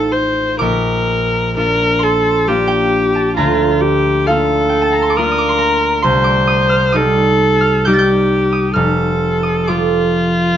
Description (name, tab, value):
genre	classical, romantic duo for viola and harp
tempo	66 BPM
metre	3/4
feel	rubato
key	Bb major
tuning	A4 = 437 Hz
part	rich viola	melody	0.0-10.6 s	F4 to C5	-15 LUFS	left 1 dB	none
part	concert harp	accompaniment	0.0-10.6 s	F1 to A6	-15 LUFS	right 1 dB	none
room	light reverb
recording	nothing above 7.5 kHz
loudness	-12 LUFS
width	side -10 dB against mid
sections	0.0-10.6 A section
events	none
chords	0.0 F7/A; 0.6 Bb; 3.4 Bb/D; 6.0 Cm; 8.8 F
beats	| 0.62 1.56 2.47 | 3.37 4.27 5.17 | 6.05 6.96 7.86 | 8.75 9.68